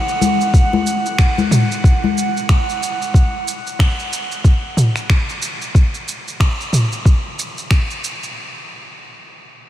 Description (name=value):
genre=organic downtempo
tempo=92 BPM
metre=4/4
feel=swing 58% on 16ths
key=unclear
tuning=A4 = 440 Hz
part: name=drifting glass-harmonics texture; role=texture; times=0.0-3.2 s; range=F#5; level=-23 LUFS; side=right 4 dB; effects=chorus, built-in reverb
part: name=organic electronic drum kit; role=drums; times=0.1-8.3 s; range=finger snaps, shaker, toms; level=-21 LUFS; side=equal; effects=small room reverb
part: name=congas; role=percussion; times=0.2-2.1 s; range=none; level=-21 LUFS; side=left 6 dB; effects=none
part: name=electronic kick drum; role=drums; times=0.5-7.9 s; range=none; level=-12 LUFS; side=equal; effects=small room reverb
room=moderate huge ambient reverb, RT60 7.9 s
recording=dreamy mix soaked in reverb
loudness=-14 LUFS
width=side -13 dB against mid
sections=0.0-8.4 A section; 8.4-9.7 B section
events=none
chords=none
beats=| 0.53 1.18 1.84 2.49 | 3.14 3.79 4.45 5.10 | 5.75 6.40 7.05 7.71